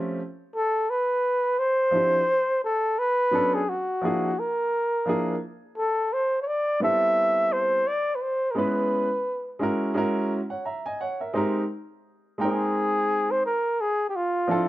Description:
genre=hip hop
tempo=86 BPM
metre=4/4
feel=swing 57% on 16ths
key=unclear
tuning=A4 = 441 Hz
part: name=warm upright piano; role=accompaniment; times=0.0-14.7 s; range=F3 to A#5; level=-26 LUFS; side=right 1 dB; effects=plate reverb
part: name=breathy flugelhorn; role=melody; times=0.6-14.7 s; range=F4 to E5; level=-22 LUFS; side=equal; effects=plate reverb
room=moderate small room ambience, RT60 0.5 s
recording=dark, warm production, nothing above 7.7 kHz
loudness=-22 LUFS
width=side -16 dB against mid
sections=0.0-14.7 A section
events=none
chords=0.2 Dm11; 3.0 Bm9; 4.4 Bb7#11; 5.8 Am9; 8.6 Dbm7; 10.0 F#9; 11.4 Abmaj9; 14.1 Dm9

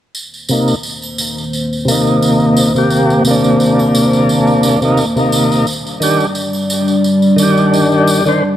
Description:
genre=trip hop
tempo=87 BPM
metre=4/4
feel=swing 54% on 16ths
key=C minor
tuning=A4 = 437 Hz
part: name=dark analog pad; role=sustained chords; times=1.1-8.6 s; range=Eb3 to D5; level=-15 LUFS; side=left 1 dB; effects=chorus
part: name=tambourine and triangle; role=percussion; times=0.1-8.4 s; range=none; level=-22 LUFS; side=right 2 dB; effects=none
part: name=tonewheel organ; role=accompaniment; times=0.5-8.4 s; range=C3 to C5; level=-12 LUFS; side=equal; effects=overdrive, slow rotary speaker, tremolo, vintage 12-bit sampler grit, low-pass filter, tape echo
room=moderate echo chamber reverb, RT60 1.9 s, studio ambience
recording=vinyl crackle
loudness=-10 LUFS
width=side -11 dB against mid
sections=0.2-8.6 A section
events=filter sweep on tonewheel organ 0.2-8.6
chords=0.2 Cm7; 5.7 Ebmaj7

